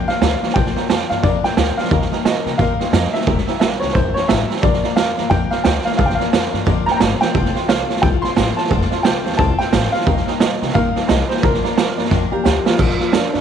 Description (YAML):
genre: rockabilly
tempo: 176 BPM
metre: 4/4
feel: swing 61% on 8ths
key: Bb major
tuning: A4 = 440 Hz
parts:
  - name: warm upright piano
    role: melody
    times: 0.0-13.4 s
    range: D4 to C6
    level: -22 LUFS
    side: equal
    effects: none
  - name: picked steel-string acoustic guitar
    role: accompaniment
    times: 0.0-13.4 s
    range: Bb2 to Bb4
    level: -24 LUFS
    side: left 16 dB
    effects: none
  - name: tack piano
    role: accompaniment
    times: 0.1-12.7 s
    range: C5 to C6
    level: -29 LUFS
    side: right 10 dB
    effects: none
  - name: upright bass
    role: bass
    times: 0.1-13.4 s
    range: E1 to C3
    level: -21 LUFS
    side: left 2 dB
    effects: none
  - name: raw garage drum kit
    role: drums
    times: 0.1-13.4 s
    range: crash cymbal, hi-hat, kick drum, snare drum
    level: -18 LUFS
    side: right 4 dB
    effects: none
room: light reverb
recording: 1960s-style stereo with parts hard left and right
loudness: -14 LUFS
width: side -8 dB against mid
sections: 0.0-12.8 A section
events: drum fill 7.2, 12.1-12.8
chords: 0.0 Bb; 1.9 Eb; 3.3 Edim7; 4.6 Bb; 7.3 F; 10.1 Eb; 11.4 Bb